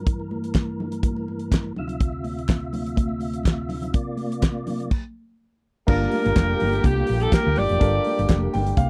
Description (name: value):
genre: disco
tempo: 124 BPM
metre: 4/4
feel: straight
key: G dorian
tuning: A4 = 441 Hz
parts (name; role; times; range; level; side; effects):
- percussive tonewheel organ; sustained chords; 0.0-8.9 s; D2 to E5; -32 LUFS; equal; chorus vibrato, fast rotary speaker, low-pass filter
- damped 70s drum kit; drums; 0.1-8.9 s; crash cymbal, hi-hat, kick drum, snare drum; -23 LUFS; equal; none
- congas; percussion; 0.1-8.9 s; none; -34 LUFS; equal; none
- group handclap; percussion; 0.5-8.4 s; none; -41 LUFS; equal; none
- breathy alto saxophone; melody; 5.9-8.5 s; G4 to D5; -27 LUFS; equal; none
- warm grand piano; accompaniment; 5.9-8.9 s; Bb3 to G5; -31 LUFS; equal; none
- warm horn section; stabs; 5.9-8.9 s; D3 to G4; -32 LUFS; equal; none
- hollow-body short-scale fingered electric bass; bass; 5.9-8.9 s; F1 to D2; -26 LUFS; equal; none
room: little or no reverb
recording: dry, close 1970s-style studio recording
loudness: -23 LUFS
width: mono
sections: 0.0-5.9 A section; 5.9-8.9 B section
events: filter sweep on tonewheel organ 0.0-5.9; stop 4.9-5.9; grand piano fill 8.3-8.9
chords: 0.0 Gm; 1.8 Dm9; 3.9 C9sus4; 5.9 Gm7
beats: | 0.07 0.55 1.03 1.52 | 2.00 2.49 2.97 3.46 | 3.94 4.43 4.91 5.40 | 5.88 6.36 6.85 7.33 | 7.81 8.29 8.78